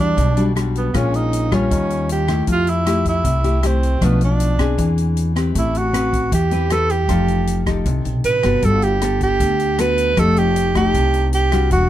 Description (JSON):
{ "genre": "bossa nova", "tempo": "156 BPM", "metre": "4/4", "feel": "straight", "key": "unclear", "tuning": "A4 = 440 Hz", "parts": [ { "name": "breathy tenor saxophone", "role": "melody", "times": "0.0-11.9 s", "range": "B3 to B4", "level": "-20 LUFS", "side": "right 4 dB", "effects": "none" }, { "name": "nylon-string guitar", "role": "accompaniment", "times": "0.0-11.9 s", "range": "A#2 to B4", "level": "-20 LUFS", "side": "left 3 dB", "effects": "none" }, { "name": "upright bass", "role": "bass", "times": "0.0-11.9 s", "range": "E1 to F2", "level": "-20 LUFS", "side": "equal", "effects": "none" }, { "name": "swinging big-band drum kit", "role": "drums", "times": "0.2-11.8 s", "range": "hi-hat, kick drum, rim click", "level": "-25 LUFS", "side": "equal", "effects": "none" } ], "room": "little or no reverb", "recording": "close, detailed microphones", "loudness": "-15 LUFS", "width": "side -12 dB against mid", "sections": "0.0-11.9 A section", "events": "none", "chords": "0.0 Em9; 0.9 A#m7; 1.7 D#9; 2.5 Fmaj9; 4.0 Bm7b5; 4.8 E7alt; 5.6 Am9; 7.1 F9; 8.6 Gmaj9; 10.2 F9" }